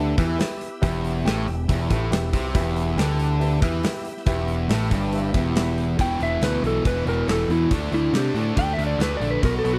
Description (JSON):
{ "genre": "classic rock", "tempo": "139 BPM", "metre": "4/4", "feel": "straight", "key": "E minor", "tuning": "A4 = 440 Hz", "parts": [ { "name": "warm baby grand piano", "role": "accompaniment", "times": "0.0-5.9 s", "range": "G4 to A5", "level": "-34 LUFS", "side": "equal", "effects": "none" }, { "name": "bright tonewheel organ", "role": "sustained chords", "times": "0.0-9.8 s", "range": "A3 to E5", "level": "-42 LUFS", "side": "equal", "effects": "none" }, { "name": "distorted electric guitar", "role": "riff", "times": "0.0-9.8 s", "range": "E2 to D4", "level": "-31 LUFS", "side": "equal", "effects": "distortion" }, { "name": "sludgy distorted guitar", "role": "riff", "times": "0.0-9.8 s", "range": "E2 to D4", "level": "-30 LUFS", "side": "equal", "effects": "overdrive" }, { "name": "growling picked electric bass", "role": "bass", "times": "0.0-9.8 s", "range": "E1 to C3", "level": "-28 LUFS", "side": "equal", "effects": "overdrive" }, { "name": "gated 80s drum kit", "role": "drums", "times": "0.2-9.7 s", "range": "hi-hat, kick drum, snare drum", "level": "-28 LUFS", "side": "equal", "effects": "none" }, { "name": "electric slide guitar", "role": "melody", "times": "6.0-9.8 s", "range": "E4 to G5", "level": "-27 LUFS", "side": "equal", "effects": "none" } ], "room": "light reverb", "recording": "none", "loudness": "-23 LUFS", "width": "mono", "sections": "0.0-6.0 A section; 6.0-9.8 B section", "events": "grand piano fill 1.7-2.5; electric slide guitar solo 6.0-9.8", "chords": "0.0 Em; 7.7 Dsus4" }